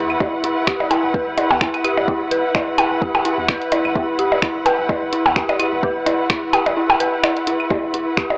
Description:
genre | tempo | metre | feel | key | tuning
minimal techno | 128 BPM | 4/4 | swing 56% on 16ths | E minor | A4 = 440 Hz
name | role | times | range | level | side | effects
punchy sub bass | bass | 0.0-8.4 s | E1 to E2 | -38 LUFS | equal | sidechain pumping
muted studio string section | texture | 0.0-8.4 s | E4 to F#5 | -22 LUFS | equal | sidechain pumping
claves and percussion blips | percussion | 0.1-8.4 s | none | -19 LUFS | equal | none
dark detuned synth bell | riff | 0.2-8.2 s | E4 to B4 | -21 LUFS | equal | chorus, sidechain pumping, analog delay
filtered dub chord stab | stabs | 0.2-7.8 s | B3 to G4 | -29 LUFS | equal | none
electronic kick drum | drums | 0.2-8.3 s | none | -23 LUFS | equal | none
punchy analog drum machine | drums | 0.4-8.3 s | finger snaps, hi-hat | -22 LUFS | equal | none
room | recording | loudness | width
light reverb, digital ambience | dry, gritty hardware recording, transformer saturation, AM radio sound | -16 LUFS | side -37 dB against mid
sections
0.0-8.4 A section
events
none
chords
0.0 Em

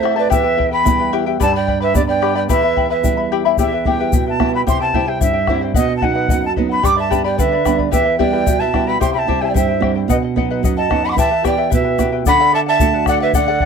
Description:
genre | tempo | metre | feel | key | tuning
andean folk, Andean ensemble | 111 BPM | 2/4 | straight | E minor | A4 = 440 Hz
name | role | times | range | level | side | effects
breathy bright large quena | melody | 0.0-13.7 s | D5 to D6 | -18 LUFS | equal | slapback echo
breathy mellow pan flute | second line | 0.0-3.3, 6.8-13.7 s | G4 to A5 | -21 LUFS | right 11 dB | none
charango | accompaniment | 0.0-13.7 s | E4 to B5 | -21 LUFS | left 14 dB | none
flamenco guitar | accompaniment | 0.0-13.7 s | E2 to G4 | -20 LUFS | right 7 dB | none
bombo | percussion | 0.1-13.7 s | none | -20 LUFS | left 2 dB | none
egg shaker | percussion | 0.3-13.5 s | none | -30 LUFS | left 26 dB | none
room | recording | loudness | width
light reverb | dry, close 1970s-style studio recording | -13 LUFS | side -6 dB against mid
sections
0.0-3.6 A section; 3.6-12.3 B section; 12.3-13.7 C section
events
none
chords
0.3 Em; 1.4 G; 2.5 Em; 4.7 C; 5.8 B; 6.8 G; 7.9 Em; 9.0 C; 10.1 B; 11.2 Em; 12.3 D

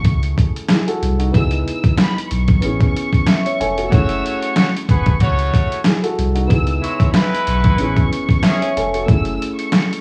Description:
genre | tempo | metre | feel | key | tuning
hip hop, boom-bap hip-hop | 93 BPM | 4/4 | swing 54% on 16ths | unclear | A4 = 440 Hz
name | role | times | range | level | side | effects
warm studio violin section | melody | 0.0-10.0 s | B5 to E6 | -29 LUFS | equal | high-pass filter, low-pass filter, tape echo
dark concert grand piano | accompaniment | 0.0-10.0 s | A3 to G#5 | -25 LUFS | equal | high-pass filter, low-pass filter
warm sub bass | bass | 0.0-9.4 s | E#1 to C#2 | -21 LUFS | equal | none
boom bap sampler-style drum kit | drums | 0.0-10.0 s | hi-hat, kick drum, snare drum | -18 LUFS | equal | vintage 12-bit sampler grit
clear trumpet section | stabs | 3.9-8.7 s | G#3 to C#5 | -25 LUFS | equal | high-pass filter, low-pass filter, tape echo
room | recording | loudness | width
small room reverb | dry, gritty hardware recording, vinyl crackle, small room ambience | -17 LUFS | mono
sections
0.0-10.0 A section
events
none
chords
0.0 F#m7; 1.3 C#m7; 2.6 Amaj7; 3.9 F#m7; 6.5 C#m7; 7.8 Amaj7; 9.1 F#m7

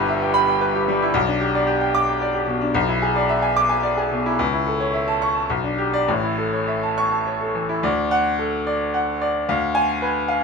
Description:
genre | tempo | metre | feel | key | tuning
classical, virtuoso piano study | 100-114 BPM | 3/4 | rubato | D major | A4 = 440 Hz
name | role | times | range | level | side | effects
clear grand piano | solo | 0.0-10.4 s | G1 to D6 | -18 LUFS | equal | none
room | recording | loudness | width
light reverb | minimal, uncompressed stereo recording | -18 LUFS | side -4 dB against mid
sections
0.0-7.8 A section; 7.8-10.4 B section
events
none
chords
0.0 Em/G; 1.1 G/B; 2.8 E7/B; 4.4 A/C#; 5.5 G/B; 6.1 A; 7.8 D; 9.5 Ddim7

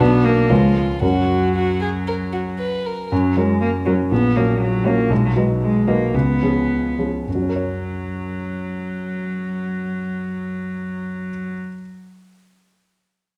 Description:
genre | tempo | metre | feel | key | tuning
quick classical-period movement for piano trio | 101-122 BPM | 4/4 | rubato | F# major | A4 = 439 Hz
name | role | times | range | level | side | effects
dark violin | melody | 0.0-3.1 s | D4 to B4 | -26 LUFS | equal | none
rich cello | second line | 0.0-11.5 s | F#3 to B3 | -24 LUFS | equal | none
warm grand piano | accompaniment | 0.0-11.8 s | A#1 to C#5 | -22 LUFS | equal | none
room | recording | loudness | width
moderate recital hall reverb, RT60 1.4 s | none | -20 LUFS | mono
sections
0.0-3.1 A section; 3.1-7.3 B section; 7.3-11.9 C section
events
slowing down 2.1-7.3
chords
0.0 Bm; 0.5 C#7; 1.0 F#; 4.1 F#/A#; 5.1 B; 6.1 C#7; 7.3 F#

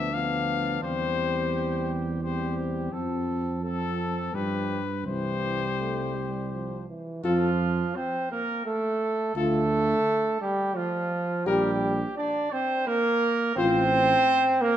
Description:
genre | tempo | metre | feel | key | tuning
classical, brass quintet | 85 BPM | 3/4 | straight | C major, F major from 7.3 s | A4 = 440 Hz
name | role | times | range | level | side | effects
clear cornet | melody | 0.0-13.8 s | A4 to F5 | -32 LUFS | left 8 dB | none
clear trumpet | second line | 0.0-14.8 s | D4 to D5 | -32 LUFS | right 3 dB | none
clear trombone | accompaniment | 0.0-14.8 s | E3 to D4 | -27 LUFS | right 1 dB | none
mellow French horn | accompaniment | 0.0-13.8 s | G3 to G4 | -31 LUFS | left 4 dB | none
mellow tuba | bass | 0.0-14.2 s | A1 to G2 | -30 LUFS | right 3 dB | none
room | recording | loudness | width
moderate recital hall reverb, RT60 1.8 s | none | -24 LUFS | side -11 dB against mid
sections
0.0-7.3 A section; 7.3-14.8 B section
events
none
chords
0.0 Bdim/D; 0.8 C/E; 2.9 F; 4.4 G7; 5.1 C; 7.3 F; 9.4 Dm; 11.5 Gm/Bb; 13.6 F/A

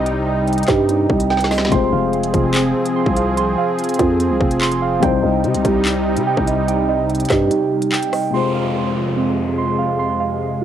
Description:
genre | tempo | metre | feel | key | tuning
hip hop, drill | 145 BPM | 4/4 | half-time | unclear | A4 = 440 Hz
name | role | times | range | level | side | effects
dark concert grand piano | accompaniment | 0.0-10.6 s | C3 to C5 | -24 LUFS | left 8 dB | low-pass filter, cassette tape
warm analog pad | sustained chords | 0.0-10.6 s | F2 to Ab4 | -21 LUFS | left 1 dB | chorus, cassette tape
muted felt-like synth keys | arpeggios | 0.0-10.6 s | C4 to C6 | -20 LUFS | right 7 dB | chorus, low-pass filter, cassette tape, analog delay
growling 808-style bass | bass | 0.0-7.5 s | F1 to C3 | -21 LUFS | left 1 dB | none
drill drum kit | drums | 0.1-8.2 s | handclaps, hi-hat, kick drum, rim click, snare drum | -22 LUFS | left 1 dB | cassette tape
downlifter | sound effects | 8.3-10.6 s | none | -29 LUFS | left 1 dB | none
room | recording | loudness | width
light reverb | home recording on cassette | -15 LUFS | side -10 dB against mid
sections
0.0-8.3 A section; 8.3-10.6 B section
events
drum fill 1.3-1.7; kick muted 7.5-8.3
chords
0.0 Cm; 1.7 Fm; 5.0 Cm; 8.3 Fm

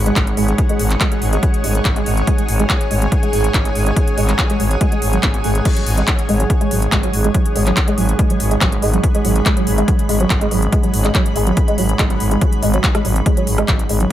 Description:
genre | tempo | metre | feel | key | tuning
driving peak-time techno | 142 BPM | 4/4 | straight | G# minor | A4 = 440 Hz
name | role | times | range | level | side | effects
growling FM bass | bass | 0.0-14.1 s | G#1 | -18 LUFS | equal | sidechain pumping
metallic inharmonic drone | drone | 0.0-14.1 s | G#2 to G#3 | -26 LUFS | right 3 dB | chorus, built-in reverb, sidechain pumping
granular cloud pad | texture | 0.0-14.1 s | G#4 to D#6 | -24 LUFS | right 1 dB | built-in reverb, sidechain pumping
woody wave-folded pluck | riff | 0.1-14.1 s | F#3 to G#4 | -22 LUFS | right 1 dB | tube saturation, ensemble chorus, sidechain pumping, dub echo
techno drum kit | drums | 0.1-14.1 s | crash cymbal, handclaps, hi-hat, rim click | -22 LUFS | left 1 dB | none
electronic kick drum | drums | 0.2-13.8 s | none | -17 LUFS | equal | none
room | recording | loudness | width
light reverb, digital ambience | none | -14 LUFS | side -12 dB against mid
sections
0.0-14.1 A section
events
filter sweep on synth arpeggio sound 0.0-14.1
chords
0.0 G#m

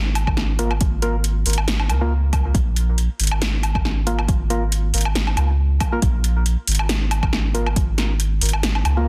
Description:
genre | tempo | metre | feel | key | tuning
deep dubstep | 138 BPM | 4/4 | swing 54% on 16ths, half-time | Bb minor | A4 = 441 Hz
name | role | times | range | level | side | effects
soft dub sub bass | bass | 0.0-9.1 s | Ab1 to Db2 | -22 LUFS | equal | none
deep house drum kit | drums | 0.2-8.9 s | hi-hat, snare drum, woodblock | -26 LUFS | equal | overdrive
electronic kick drum | drums | 0.3-7.9 s | none | -23 LUFS | equal | overdrive
percussive organ stab | stabs | 0.6-9.1 s | Bb3 to Bb4 | -30 LUFS | equal | chorus, dub echo
room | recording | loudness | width
digital ambience | dense, heavily limited modern master | -20 LUFS | mono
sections
0.0-9.1 A section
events
none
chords
0.0 Bb5

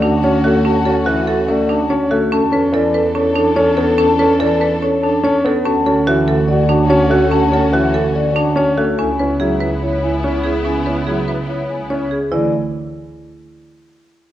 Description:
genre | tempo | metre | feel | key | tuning
classical, minimalist pattern music | 144 BPM | 4/4 | straight | D lydian | A4 = 445 Hz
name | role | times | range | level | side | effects
vibraphone with soft mallets | melody | 0.0-12.5 s | G#4 to A5 | -21 LUFS | left 5 dB | none
mellow French horn | second line | 0.0-12.1 s | E4 to A4 | -21 LUFS | right 2 dB | none
warm grand piano | accompaniment | 0.0-12.5 s | E3 to C#4 | -19 LUFS | left 1 dB | none
clear studio string section | sustained chords | 0.0-12.1 s | B3 to A4 | -25 LUFS | left 2 dB | none
marimba with hard mallets | arpeggios | 0.0-12.5 s | C#4 to C#5 | -20 LUFS | right 3 dB | none
rich studio double bass section | bass | 0.0-12.5 s | C#2 to E2 | -21 LUFS | right 2 dB | none
room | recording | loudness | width
moderate scoring stage reverb, RT60 1.8 s | worn, warbling old tape, cassette tape, warbly pitch drift | -13 LUFS | side -12 dB against mid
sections
0.0-12.3 A section; 12.3-14.0 B section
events
none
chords
0.0 Dmaj7; 2.3 E7sus4; 5.6 Dmaj7; 9.0 C#m7; 12.3 Dsus2

